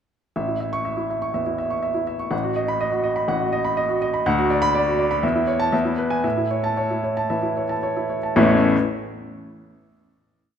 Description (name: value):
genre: classical, virtuoso piano study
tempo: 110-125 BPM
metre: 4/4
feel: rubato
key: A major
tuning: A4 = 438 Hz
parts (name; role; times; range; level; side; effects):
- warm baby grand piano; solo; 0.4-8.8 s; A1 to C#6; -20 LUFS; equal; none
room: wet recital hall reverb, RT60 1.8 s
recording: none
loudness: -19 LUFS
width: side -8 dB against mid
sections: 0.4-8.4 A section; 8.4-10.5 final chord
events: slowing down 3.3-8.4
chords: 0.4 A; 2.3 B7/A; 4.3 Bm/D; 5.2 A/E; 5.7 E; 6.2 A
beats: | 0.36 0.85 1.35 1.84 | 2.32 2.81 3.29 3.77 | 4.26 4.75 5.23 5.73 | 6.24 6.77 7.30 7.83 | 8.37